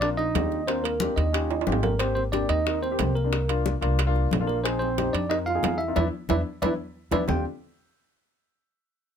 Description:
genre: Afro-Cuban jazz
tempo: 182 BPM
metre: 4/4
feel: straight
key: Eb major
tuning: A4 = 441 Hz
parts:
  - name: bell-like tine electric piano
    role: melody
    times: 0.0-7.4 s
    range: Bb4 to G5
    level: -29 LUFS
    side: equal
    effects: none
  - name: breathy trombone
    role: second line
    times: 0.0-7.4 s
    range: G3 to F4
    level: -32 LUFS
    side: right 11 dB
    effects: none
  - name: dark baby grand piano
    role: accompaniment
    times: 0.0-7.4 s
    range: Bb3 to Bb4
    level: -30 LUFS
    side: left 6 dB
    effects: none
  - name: upright bass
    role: bass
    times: 0.0-7.4 s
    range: Ab1 to F2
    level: -28 LUFS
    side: equal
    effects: none
  - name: bongos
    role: percussion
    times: 0.0-7.4 s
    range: none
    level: -34 LUFS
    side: left 8 dB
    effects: none
  - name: congas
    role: percussion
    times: 0.0-7.4 s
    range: none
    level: -33 LUFS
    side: left 4 dB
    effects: none
  - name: timbales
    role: percussion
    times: 0.4-7.4 s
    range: none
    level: -32 LUFS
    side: right 12 dB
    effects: none
room: little or no reverb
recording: close, detailed microphones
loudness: -23 LUFS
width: side -8 dB against mid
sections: 0.0-2.0 A section; 2.0-7.3 B section; 7.3-8.6 C section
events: drum fill 1.5-2.0, 6.0-7.3; band accent 6.0-7.3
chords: 0.0 Ebmaj13; 1.3 Eb7; 2.0 Abmaj7; 3.3 C9sus4; 4.6 Bb7sus4; 6.0 E5; 7.3 Ebmaj13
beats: 0.02 0.35 | 0.68 1.01 1.34 1.67 | 2.00 2.33 2.66 2.99 | 3.32 3.65 3.98 4.31 | 4.64 4.97 5.30 5.63 | 5.96 6.29 6.62 6.95 | 7.28

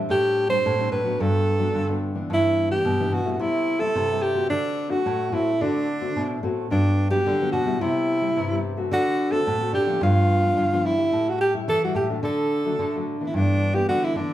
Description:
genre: samba and choro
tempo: 109 BPM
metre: 4/4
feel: straight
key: G major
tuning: A4 = 440 Hz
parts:
  - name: nylon-string guitar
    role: accompaniment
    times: 0.0-14.3 s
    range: G2 to F#4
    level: -29 LUFS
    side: left 4 dB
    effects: none
  - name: breathy alto saxophone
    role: melody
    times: 0.1-14.3 s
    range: D4 to C5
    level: -22 LUFS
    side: right 1 dB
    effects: none
  - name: nylon-string guitar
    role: bass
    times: 0.1-14.3 s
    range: G2 to E3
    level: -26 LUFS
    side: equal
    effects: none
room: moderate large studio reverb, RT60 0.9 s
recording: band playing live in one room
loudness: -20 LUFS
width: side -13 dB against mid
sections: 0.0-14.3 A section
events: none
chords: 0.1 D7sus4/A; 1.2 Gmaj7; 2.3 Em7/G; 3.4 C6; 4.5 D7; 6.7 Gmaj7; 7.8 Cmaj7; 8.9 D7; 10.0 G7; 11.1 A7; 12.2 D; 13.3 G6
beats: | 0.10 0.65 1.20 1.75 | 2.31 2.86 3.41 3.96 | 4.51 5.07 5.62 6.17 | 6.72 7.27 7.83 8.38 | 8.93 9.48 10.03 10.59 | 11.14 11.69 12.24 12.79 | 13.34 13.89

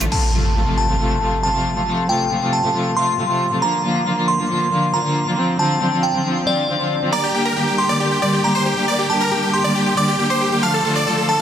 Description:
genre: trance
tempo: 137 BPM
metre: 4/4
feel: straight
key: unclear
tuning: A4 = 441 Hz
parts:
  - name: dark chamber string section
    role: sustained chords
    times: 0.0-11.3 s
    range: C3 to G4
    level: -20 LUFS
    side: equal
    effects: none
  - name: glassy synth bell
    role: second line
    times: 0.1-11.4 s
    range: D5 to D6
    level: -21 LUFS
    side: equal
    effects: chorus, digital delay
  - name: impact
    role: sound effects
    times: 0.1-1.9 s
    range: none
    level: -21 LUFS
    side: equal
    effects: none
  - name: supersaw chords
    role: melody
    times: 7.1-11.4 s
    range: G4 to F5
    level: -19 LUFS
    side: equal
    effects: tape echo
  - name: analog pluck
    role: second line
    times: 7.1-11.4 s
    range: G4 to F5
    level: -29 LUFS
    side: left 1 dB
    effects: none
room: light reverb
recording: dense, heavily limited modern master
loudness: -16 LUFS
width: side -9 dB against mid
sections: 0.1-11.4 A section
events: impact 0.1-1.9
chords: 0.1 F; 3.6 Bb; 7.1 Gm; 10.6 Dm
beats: | 0.12 0.56 1.00 1.43 | 1.87 2.31 2.75 3.19 | 3.62 4.06 4.50 4.94 | 5.38 5.81 6.25 6.69 | 7.13 7.57 8.00 8.44 | 8.88 9.32 9.76 10.19 | 10.63 11.07

